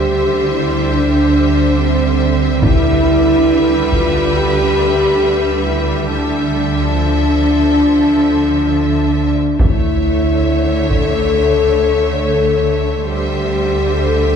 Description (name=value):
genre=cinematic, epic orchestral film score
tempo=69 BPM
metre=4/4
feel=straight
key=D dorian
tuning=A4 = 439 Hz
part: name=rich studio violin section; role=melody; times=0.0-14.4 s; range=E5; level=-25 LUFS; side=left 2 dB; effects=none
part: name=warm symphonic violin section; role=second line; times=0.0-14.4 s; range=A4 to C#5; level=-23 LUFS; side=left 2 dB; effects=none
part: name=clear symphonic viola section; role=accompaniment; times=0.0-14.4 s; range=F3 to A3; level=-25 LUFS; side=right 2 dB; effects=none
part: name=dark French horn section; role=sustained chords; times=0.0-14.4 s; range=C4 to A4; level=-15 LUFS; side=left 2 dB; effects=none
part: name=rich studio double bass section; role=bass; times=0.0-14.4 s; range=D2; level=-19 LUFS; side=right 3 dB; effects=none
part: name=warm symphonic cello section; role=bass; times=0.0-14.4 s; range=D3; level=-22 LUFS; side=right 2 dB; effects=none
part: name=taiko ensemble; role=drums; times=2.6-4.3, 9.6-11.3 s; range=none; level=-17 LUFS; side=equal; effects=none
room=wet scoring stage reverb, RT60 1.8 s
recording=heard from further back in the room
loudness=-12 LUFS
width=side -7 dB against mid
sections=0.0-14.4 A section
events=none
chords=0.0 C/D; 2.6 Em/D; 6.1 Dmadd9; 9.6 A/D; 13.1 C/D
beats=0.04 0.90 1.76 | 2.63 3.49 4.35 5.21 | 6.08 6.96 7.83 8.71 | 9.59 10.46 11.34 12.21 | 13.07 13.94